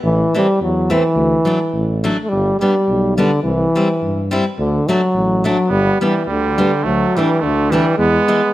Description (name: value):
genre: alpine folk, alpine dance band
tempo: 106 BPM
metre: 2/4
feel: swing 54% on 8ths, rubato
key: G major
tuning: A4 = 439 Hz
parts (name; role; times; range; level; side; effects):
- clear euphonium; melody; 0.0-8.5 s; D3 to A3; -16 LUFS; equal; none
- mellow tuba; bass; 0.0-8.2 s; G1 to G2; -20 LUFS; equal; none
- fingerpicked steel-string acoustic guitar; accompaniment; 0.3-8.4 s; E3 to E4; -20 LUFS; left 1 dB; none
- clear trumpet; second line; 5.7-8.5 s; G3 to B3; -19 LUFS; right 6 dB; none
room: light reverb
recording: close, detailed microphones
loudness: -14 LUFS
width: side -14 dB against mid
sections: 0.0-8.5 A section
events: none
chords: 0.0 Am; 1.2 Dadd9; 2.3 G; 3.4 C; 4.6 D; 5.7 G; 6.8 Dsus2; 8.0 E